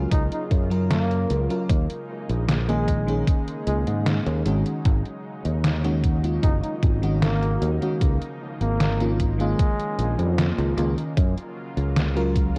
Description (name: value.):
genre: vaporwave.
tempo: 76 BPM.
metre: 4/4.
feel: straight.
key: Db major.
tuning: A4 = 440 Hz.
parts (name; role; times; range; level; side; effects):
FM electric piano with soft pad layer; accompaniment; 0.0-12.6 s; Eb3 to Bb4; -30 LUFS; equal; subtle chorus, dub echo.
lush unison pad; sustained chords; 0.0-12.6 s; Db3 to F4; -38 LUFS; equal; chorus.
fingered electric bass; bass; 0.0-12.6 s; Gb1 to Ab2; -26 LUFS; equal; tube saturation.
breathy flugelhorn; melody; 0.1-10.5 s; Ab3 to Eb4; -34 LUFS; equal; vintage 12-bit sampler grit, dub echo.
detuned 8-bit digital drum machine; drums; 0.1-12.6 s; hi-hat, snare drum; -28 LUFS; equal; overdrive.
electronic kick drum; drums; 0.1-12.5 s; none; -24 LUFS; equal; overdrive.
room: light reverb, digital ambience.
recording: echo-heavy mix, cassette tape.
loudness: -23 LUFS.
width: mono.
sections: 0.0-12.6 A section.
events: none.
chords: 0.0 Gbmaj7; 1.7 Eb7sus4; 4.5 Ab7sus4; 8.0 Db69; 11.2 Gbmaj7.